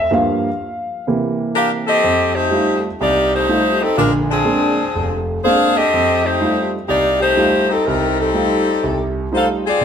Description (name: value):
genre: jazz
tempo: 124 BPM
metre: 4/4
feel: swing 67% on 8ths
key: F major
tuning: A4 = 440 Hz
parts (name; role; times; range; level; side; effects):
- warm concert grand piano; accompaniment; 0.0-9.8 s; F1 to F5; -19 LUFS; right 2 dB; none
- clear saxophone section; melody; 1.6-9.8 s; F3 to F5; -15 LUFS; left 2 dB; none
room: wet large studio reverb, RT60 1.5 s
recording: none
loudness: -14 LUFS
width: side -8 dB against mid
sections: 0.0-2.0 A section; 2.0-9.8 B section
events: grand piano solo 0.0-2.0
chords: 0.1 Gm7; 1.1 C7; 2.0 F9; 4.0 Bb9; 5.9 F9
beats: | 0.09 0.57 1.06 1.54 | 2.03 2.51 3.00 3.48 | 3.97 4.45 4.94 5.42 | 5.91 6.39 6.88 7.36 | 7.85 8.33 8.82 9.30 | 9.79